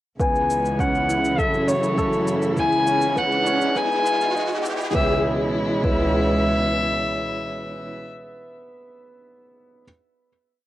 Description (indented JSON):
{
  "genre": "piano and strings electronica",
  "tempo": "101 BPM",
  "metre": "4/4",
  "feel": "straight",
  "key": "C# minor",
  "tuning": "A4 = 440 Hz",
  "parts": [
    { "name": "dark violin", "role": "melody", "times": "0.2-8.1 s", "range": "C#5 to G#5", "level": "-23 LUFS", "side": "left 1 dB", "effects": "low-pass filter" },
    { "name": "dark string quartet", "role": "sustained chords", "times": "0.2-7.9 s", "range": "B2 to E4", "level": "-25 LUFS", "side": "right 1 dB", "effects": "cassette tape" },
    { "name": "felt-muted upright piano", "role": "riff", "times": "0.2-9.8 s", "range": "B3 to C#5", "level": "-27 LUFS", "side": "equal", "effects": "cassette tape" },
    { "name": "warm studio double bass section", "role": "bass", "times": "0.2-6.7 s", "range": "C#2 to F#2", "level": "-28 LUFS", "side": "equal", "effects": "sidechain pumping" },
    { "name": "electronic kick drum", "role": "drums", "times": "0.2-6.0 s", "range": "none", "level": "-26 LUFS", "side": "equal", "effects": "overdrive, cassette tape" },
    { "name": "shaker", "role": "drums", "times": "0.2-4.9 s", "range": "none", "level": "-39 LUFS", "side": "equal", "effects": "cassette tape" },
    { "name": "riser", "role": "sound effects", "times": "2.0-5.0 s", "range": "none", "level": "-30 LUFS", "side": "left 1 dB", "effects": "none" }
  ],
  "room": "wet booth ambience, RT60 0.2 s",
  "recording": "home recording on cassette, high-pass filter",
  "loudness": "-19 LUFS",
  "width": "side -14 dB against mid",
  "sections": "0.2-5.0 build; 5.0-7.3 final chord",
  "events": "build-up 0.2-5.0; riser 2.0-5.0",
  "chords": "0.2 C#m7; 1.4 F#m7; 2.6 C#m7; 3.8 Emaj7; 5.0 C#m7"
}